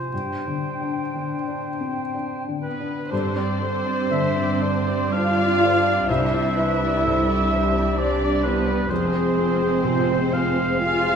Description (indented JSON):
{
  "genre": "cinematic, emotional film score for orchestra",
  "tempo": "57-65 BPM",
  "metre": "3/4",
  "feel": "rubato",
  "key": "unclear",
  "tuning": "A4 = 437 Hz",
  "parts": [
    { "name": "warm oboe", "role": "second line", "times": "0.0-11.2 s", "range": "B4 to F5", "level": "-27 LUFS", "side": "right 1 dB", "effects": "none" },
    { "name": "felt-muted upright piano", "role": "accompaniment", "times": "0.0-11.2 s", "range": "C2 to E5", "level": "-30 LUFS", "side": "left 2 dB", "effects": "none" },
    { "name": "flute section", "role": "second line", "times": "0.1-2.8 s", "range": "G5", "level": "-33 LUFS", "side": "left 2 dB", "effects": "none" },
    { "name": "warm clarinet", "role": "second line", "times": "0.1-11.2 s", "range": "D4 to F5", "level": "-28 LUFS", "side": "left 1 dB", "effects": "none" },
    { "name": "muted studio violin section", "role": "second line", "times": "2.6-11.2 s", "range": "B4 to F5", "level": "-30 LUFS", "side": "left 4 dB", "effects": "none" },
    { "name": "muted studio cello section", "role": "bass", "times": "2.6-11.2 s", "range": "B3 to F4", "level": "-25 LUFS", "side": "right 4 dB", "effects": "none" },
    { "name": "muted studio violin section", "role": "melody", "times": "3.1-11.2 s", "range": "Ab4 to D5", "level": "-32 LUFS", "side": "left 3 dB", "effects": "none" },
    { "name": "muted studio viola section", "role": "accompaniment", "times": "3.1-11.2 s", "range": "D3 to Ab4", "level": "-31 LUFS", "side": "equal", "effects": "none" },
    { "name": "mellow French horn section", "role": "sustained chords", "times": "3.1-11.2 s", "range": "G3 to D4", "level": "-30 LUFS", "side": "left 6 dB", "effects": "none" },
    { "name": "muted studio double bass section", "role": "bass", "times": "3.1-11.2 s", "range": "F1 to G2", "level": "-26 LUFS", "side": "right 2 dB", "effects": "none" }
  ],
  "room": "wet scoring stage reverb, RT60 1.7 s",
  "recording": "minimal, uncompressed stereo recording",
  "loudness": "-20 LUFS",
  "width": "side -7 dB against mid",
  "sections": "0.0-3.1 A section; 3.1-11.2 B section",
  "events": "none",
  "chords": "0.1 Gsus4; 6.1 Cadd9; 8.9 Fm",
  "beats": "| 0.12 1.13 2.13 | 3.12 4.09 5.11 | 6.08 7.04 7.97 | 8.90 9.84 10.82"
}